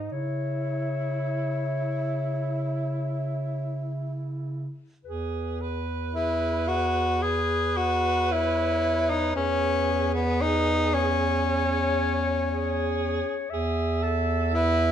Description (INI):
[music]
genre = classical, lyrical piece for single-reed quartet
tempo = 47-60 BPM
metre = 4/4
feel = rubato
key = C# minor, E major from 5.1 s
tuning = A4 = 438 Hz
[part]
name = warm clarinet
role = melody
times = 0.0-14.9 s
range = G#4 to E5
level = -33 LUFS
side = left 8 dB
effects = none
[part]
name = bright alto saxophone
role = second line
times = 0.0-14.9 s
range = D#4 to B4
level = -33 LUFS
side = right 8 dB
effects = none
[part]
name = mellow bass clarinet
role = bass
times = 0.0-14.9 s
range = E2 to C#3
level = -29 LUFS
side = right 1 dB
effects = none
[part]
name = clear tenor saxophone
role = accompaniment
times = 0.1-14.9 s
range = B3 to G#4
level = -26 LUFS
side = left 1 dB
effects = none
[sound]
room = wet stone room reverb, RT60 1.0 s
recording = dark, warm production, nothing above 10.3 kHz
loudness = -24 LUFS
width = side -9 dB against mid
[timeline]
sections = 0.0-5.1 A section; 5.1-14.9 B section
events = none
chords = 0.1 C#m; 5.1 E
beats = | 0.12 1.40 2.65 3.87 | 5.06 6.15 7.22 8.31 | 9.35 10.41 11.47 12.51 | 13.51 14.53